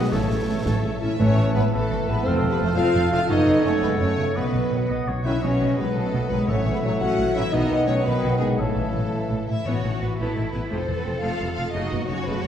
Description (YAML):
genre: cinematic, heroic adventure film score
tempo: 114 BPM (dotted quarters)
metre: 6/8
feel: straight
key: A lydian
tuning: A4 = 440 Hz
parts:
  - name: warm symphonic violin section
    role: melody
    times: 0.0-12.5 s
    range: G#4 to F#5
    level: -33 LUFS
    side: left 3 dB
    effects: none
  - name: dark clarinet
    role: second line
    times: 0.0-9.5 s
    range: F#4 to C#5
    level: -30 LUFS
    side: right 1 dB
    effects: none
  - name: mellow hollow flute section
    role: second line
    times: 0.0-9.5 s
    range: G#4 to A5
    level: -36 LUFS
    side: left 2 dB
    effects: none
  - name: warm oboe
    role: second line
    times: 0.0-9.5 s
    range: B4 to F5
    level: -34 LUFS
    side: right 1 dB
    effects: none
  - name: warm studio violin section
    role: second line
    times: 0.0-12.5 s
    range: A3 to A5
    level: -35 LUFS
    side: left 2 dB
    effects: none
  - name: rich symphonic viola section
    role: accompaniment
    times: 0.0-12.5 s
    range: C#3 to C#5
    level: -31 LUFS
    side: right 1 dB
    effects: none
  - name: mellow French horn section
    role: sustained chords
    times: 0.0-9.5 s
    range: G#3 to F#4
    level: -25 LUFS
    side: equal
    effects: none
  - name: warm trombone section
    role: sustained chords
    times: 0.0-9.5 s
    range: C#3 to B3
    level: -34 LUFS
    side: right 2 dB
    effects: none
  - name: concert harp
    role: arpeggios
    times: 0.0-12.5 s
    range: F2 to A5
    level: -31 LUFS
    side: left 4 dB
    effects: none
  - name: dark symphonic double bass section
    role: bass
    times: 0.0-12.5 s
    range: F1 to B1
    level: -28 LUFS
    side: right 1 dB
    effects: none
  - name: rich symphonic cello section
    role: bass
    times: 0.0-12.5 s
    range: F2 to A4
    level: -30 LUFS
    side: right 2 dB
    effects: none
  - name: mellow tuba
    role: bass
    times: 0.1-1.1 s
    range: A1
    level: -32 LUFS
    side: right 2 dB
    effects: none
  - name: concert snare drum and concert bass drum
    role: drums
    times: 0.1-0.8 s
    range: none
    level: -31 LUFS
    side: equal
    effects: none
  - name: timpani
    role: percussion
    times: 1.2-1.7, 6.5-7.0, 9.7-10.1 s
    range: A2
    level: -27 LUFS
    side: left 2 dB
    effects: none
room: wet scoring stage reverb, RT60 1.8 s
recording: heard from further back in the room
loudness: -20 LUFS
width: side -9 dB against mid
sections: 0.0-1.2 A section; 1.2-9.7 A section; 9.7-12.5 B section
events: none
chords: 0.1 A; 1.2 Asus2; 2.3 F; 3.3 F#m; 4.4 B; 5.4 Badd9; 6.5 A6; 7.5 B; 8.6 A; 9.7 Asus2; 10.7 F; 11.7 F#m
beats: | 0.12 0.66 | 1.20 1.73 | 2.25 2.77 | 3.30 3.82 | 4.35 4.89 | 5.42 5.95 | 6.48 7.00 | 7.52 8.05 | 8.58 9.11 | 9.65 10.18 | 10.70 11.22 | 11.74 12.27